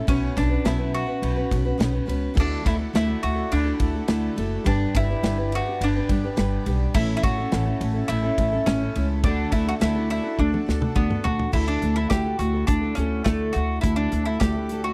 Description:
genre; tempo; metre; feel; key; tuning
folk rock and heartland rock; 105 BPM; 4/4; straight; D major; A4 = 440 Hz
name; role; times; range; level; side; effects
picked steel-string acoustic guitar; accompaniment; 0.0-14.9 s; A2 to B4; -31 LUFS; equal; none
mandolin; melody; 0.1-14.9 s; A3 to G4; -29 LUFS; equal; none
upright bass; bass; 0.1-14.9 s; F#1 to D2; -27 LUFS; equal; none
natural country drum kit; drums; 0.1-14.8 s; crash cymbal, hi-hat, kick drum, ride cymbal, snare drum, toms; -28 LUFS; equal; none
accordion; sustained chords; 2.4-14.9 s; G3 to F#5; -41 LUFS; equal; none
room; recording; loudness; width
little or no reverb; dry, close 1970s-style studio recording; -23 LUFS; mono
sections
0.0-11.5 A section; 11.5-14.9 B section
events
drum fill 10.4-11.5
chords
0.1 Bsus2; 2.4 Dadd9; 4.7 G; 7.0 A; 9.2 D; 11.5 Dadd9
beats
| 0.08 0.65 1.22 1.80 | 2.37 2.94 3.52 4.09 | 4.66 5.23 5.81 6.38 | 6.95 7.52 8.10 8.67 | 9.24 9.81 10.39 10.96 | 11.54 12.11 12.69 13.26 | 13.84 14.41

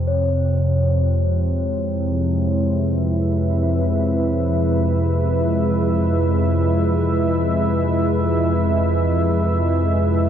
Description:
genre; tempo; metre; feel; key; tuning
dark ambient drone; free time; none; none; unclear; A4 = 440 Hz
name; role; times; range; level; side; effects
deep rumbling drone; drone; 0.0-10.3 s; F2 to C3; -20 LUFS; equal; built-in reverb
dark analog pad; sustained chords; 1.2-10.3 s; F2 to E5; -20 LUFS; right 1 dB; chorus
bronze singing bowl; texture; 0.1-10.3 s; Db5; -30 LUFS; left 3 dB; none
room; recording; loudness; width
wet huge ambient reverb, RT60 9.3 s; dark, warm production; -17 LUFS; side -9 dB against mid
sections
0.0-10.3 A section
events
none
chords
0.1 E/F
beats
free time

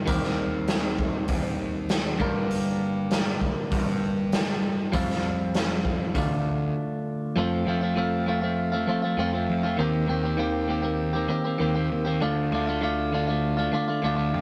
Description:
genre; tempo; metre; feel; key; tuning
psychedelic rock; 99 BPM; 4/4; straight; unclear; A4 = 442 Hz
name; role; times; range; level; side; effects
clean electric guitar; riff; 0.0-14.4 s; G2 to Bb4; -28 LUFS; equal; none
fuzz picked electric bass; bass; 0.0-14.4 s; D2 to G2; -31 LUFS; equal; overdrive
raw garage drum kit; drums; 0.1-6.3 s; hi-hat, kick drum, snare drum; -30 LUFS; equal; none
room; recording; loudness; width
light reverb; rough rehearsal-room recording, tube saturation; -26 LUFS; mono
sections
0.0-7.4 A section; 7.4-14.4 B section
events
break 6.8-7.4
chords
0.1 Eb6; 2.2 Gm; 4.9 Fsus2; 6.2 Dm; 7.4 F; 9.8 Eb6; 12.2 Dm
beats
| 0.07 0.68 1.29 1.90 | 2.50 3.11 3.72 4.33 | 4.94 5.54 6.15 6.76 | 7.37 7.97 8.58 9.19 | 9.79 10.40 11.00 11.61 | 12.21 12.81 13.42 14.02

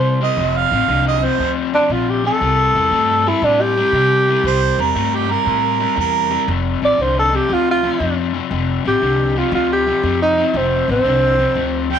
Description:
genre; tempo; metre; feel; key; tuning
electric blues shuffle; 118 BPM; 4/4; swing 68% on 8ths; unclear; A4 = 440 Hz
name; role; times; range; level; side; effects
mellow tenor saxophone; melody; 0.0-11.9 s; C4 to D5; -16 LUFS; right 1 dB; none
raw garage guitar; riff; 0.0-12.0 s; F2 to A3; -21 LUFS; left 12 dB; overdrive
upright bass; bass; 0.0-11.9 s; F1 to C3; -22 LUFS; right 1 dB; none
warm harmonica; second line; 0.2-6.5, 11.9-12.0 s; G4 to G5; -18 LUFS; right 12 dB; overdrive
room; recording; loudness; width
moderate spring reverb, RT60 1.3 s, small room ambience; 1960s-style stereo with parts hard left and right; -14 LUFS; side -8 dB against mid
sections
0.0-12.0 A section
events
none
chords
0.4 F5; 2.4 C7; 6.5 Fsus2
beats
| 0.38 0.89 1.40 1.90 | 2.41 2.92 3.43 3.94 | 4.45 4.96 5.46 5.97 | 6.48 6.99 7.50 8.01 | 8.51 9.02 9.53 10.04 | 10.55 11.05 11.56

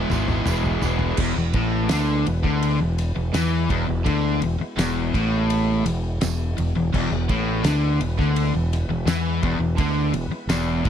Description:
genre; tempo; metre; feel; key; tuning
classic rock; 84 BPM; 4/4; straight; E mixolydian; A4 = 442 Hz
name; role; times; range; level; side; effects
clean lap steel guitar; melody; 0.0-0.8 s; none; barely audible; none; none
tonewheel organ; sustained chords; 0.0-10.9 s; G#3 to B4; -36 LUFS; right 2 dB; none
biting overdriven guitar; riff; 0.0-10.9 s; E2 to E4; -29 LUFS; equal; none
overdriven electric guitar; riff; 0.0-10.9 s; E2 to G#4; -26 LUFS; left 9 dB; none
overdriven semi-hollow guitar; riff; 0.0-10.9 s; E2 to E4; -28 LUFS; right 11 dB; spring reverb
growling fingered electric bass; bass; 0.0-10.9 s; E1 to E2; -24 LUFS; right 1 dB; overdrive
damped 70s drum kit; drums; 0.1-10.9 s; crash cymbal, kick drum, ride cymbal, snare drum, toms; -28 LUFS; equal; none
tambourine; percussion; 0.1-10.7 s; none; -38 LUFS; right 12 dB; none
room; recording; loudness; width
little or no reverb; dry, close 1970s-style studio recording; -20 LUFS; side -9 dB against mid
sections
0.0-1.2 A section; 1.2-10.9 B section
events
drum fill 0.0-1.2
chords
0.0 E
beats
0.47 | 1.18 1.90 2.62 3.34 | 4.06 4.77 5.49 6.21 | 6.92 7.63 8.35 9.06 | 9.78 10.49

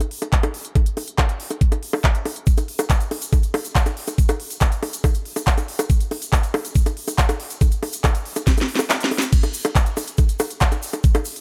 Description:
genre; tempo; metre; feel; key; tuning
trance; 140 BPM; 4/4; straight; none; none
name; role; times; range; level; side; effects
drum and bass drum kit; drums; 0.0-11.4 s; bongos, crash cymbal, handclaps, hi-hat, snare drum; -26 LUFS; equal; none
electronic kick drum; drums; 0.3-11.1 s; none; -20 LUFS; equal; overdrive
tube shaker; percussion; 2.5-11.4 s; none; -36 LUFS; equal; none
room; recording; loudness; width
little or no reverb; none; -21 LUFS; mono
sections
0.0-9.3 A section; 9.3-11.4 B section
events
drum fill 8.5-9.3; kick drops out 8.9-9.3; drop 9.3-11.4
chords
none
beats
0.33 | 0.75 1.18 1.61 2.04 | 2.47 2.90 3.33 3.75 | 4.18 4.61 5.04 5.47 | 5.90 6.33 6.75 7.18 | 7.61 8.04 8.47 8.90 | 9.33 9.75 10.18 10.61 | 11.04

